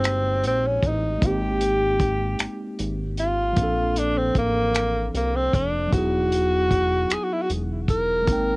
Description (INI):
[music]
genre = slow six-eight R&B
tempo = 51 BPM (dotted quarters)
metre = 6/8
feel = straight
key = unclear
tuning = A4 = 440 Hz
[part]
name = breathy tenor saxophone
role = melody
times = 0.0-8.6 s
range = Bb3 to Bb4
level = -23 LUFS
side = equal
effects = cassette tape
[part]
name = bright tine electric piano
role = accompaniment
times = 0.0-8.6 s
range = F3 to G5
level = -28 LUFS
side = equal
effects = medium stereo tremolo
[part]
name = fat analog bass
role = bass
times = 0.0-8.6 s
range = E1 to C2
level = -27 LUFS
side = equal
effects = none
[part]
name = warm soul drum kit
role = drums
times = 0.0-8.5 s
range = finger snaps, hi-hat, kick drum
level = -23 LUFS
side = equal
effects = cassette tape
[sound]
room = light reverb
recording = home recording on cassette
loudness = -20 LUFS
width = side -26 dB against mid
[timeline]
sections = 0.0-8.6 A section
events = none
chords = 0.0 Abmaj9; 3.6 Bbmaj9; 5.9 Emaj9